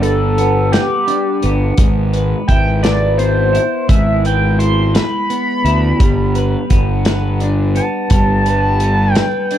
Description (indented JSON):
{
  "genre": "indie rock",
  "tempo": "57 BPM (dotted quarters)",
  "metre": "6/8",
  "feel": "straight",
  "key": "unclear",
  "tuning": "A4 = 440 Hz",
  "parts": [
    { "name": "sync lead", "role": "melody", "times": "0.0-9.6 s", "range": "G4 to C6", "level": "-18 LUFS", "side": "equal", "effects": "chorus, phaser, tape echo" },
    { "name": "twelve-string electric guitar", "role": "riff", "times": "0.0-9.6 s", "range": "G3 to B4", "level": "-18 LUFS", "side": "left 1 dB", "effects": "double-tracked left and right" },
    { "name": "fuzz fingered electric bass", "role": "bass", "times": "0.0-9.2 s", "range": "G1 to D2", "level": "-16 LUFS", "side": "equal", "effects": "overdrive" },
    { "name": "loose indie drum kit", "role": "drums", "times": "0.0-9.6 s", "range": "hi-hat, kick drum, snare drum", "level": "-16 LUFS", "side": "equal", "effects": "none" }
  ],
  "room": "little or no reverb",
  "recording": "dark, warm production",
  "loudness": "-12 LUFS",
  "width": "side -11 dB against mid",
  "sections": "0.0-9.6 A section",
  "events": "analog synth lead solo 0.0-9.6",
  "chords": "0.0 G; 1.8 E/G#; 6.0 G",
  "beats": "0.73 | 1.78 2.84 | 3.89 4.94 | 6.00 7.05 | 8.10 9.16"
}